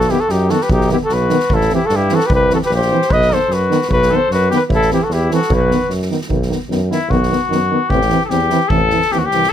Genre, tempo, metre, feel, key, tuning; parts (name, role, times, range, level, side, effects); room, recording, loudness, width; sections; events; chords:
balkan folk, Balkan brass band; 150 BPM; 2/4; swing 55% on 16ths; B phrygian dominant; A4 = 440 Hz
mellow flugelhorn; melody; 0.0-5.9 s; G4 to D#5; -16 LUFS; equal
mellow trumpet; second line; 0.0-9.5 s; D#4 to B4; -19 LUFS; left 4 dB
warm tuba; bass; 0.0-9.5 s; A1 to G2; -19 LUFS; right 1 dB
street-band drum kit; percussion; 0.0-9.5 s; kick drum, snare drum; -22 LUFS; equal
mellow French horn; accompaniment; 0.1-9.4 s; B3 to C4; -22 LUFS; left 6 dB
warm euphonium; accompaniment; 0.1-9.4 s; D#3 to E3; -21 LUFS; right 7 dB
light reverb; -13 LUFS; side -10 dB against mid
0.0-6.3 A section; 6.3-9.5 B section
trumpet solo 6.3-9.5
0.0 B; 1.5 Am; 2.3 C; 3.1 B; 4.7 Am; 5.5 B; 7.9 Am